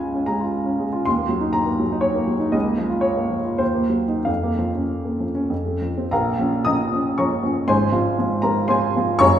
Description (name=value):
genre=classical, romantic character piece for solo piano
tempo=84-124 BPM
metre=3/4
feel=rubato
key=Bb minor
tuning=A4 = 440 Hz
part: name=warm upright piano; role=solo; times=0.0-9.4 s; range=Gb1 to Eb6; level=-18 LUFS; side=equal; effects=none
room=wet recital hall reverb, RT60 1.3 s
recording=heard from further back in the room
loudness=-19 LUFS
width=side -10 dB against mid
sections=0.0-6.1 A section; 6.1-9.4 B section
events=none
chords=0.0 Db; 1.1 Ebm; 2.5 Bbm/Db; 3.6 Cm7b5/Eb; 4.3 Bbm/F; 5.5 F; 6.1 Bbm; 7.7 Fm/Ab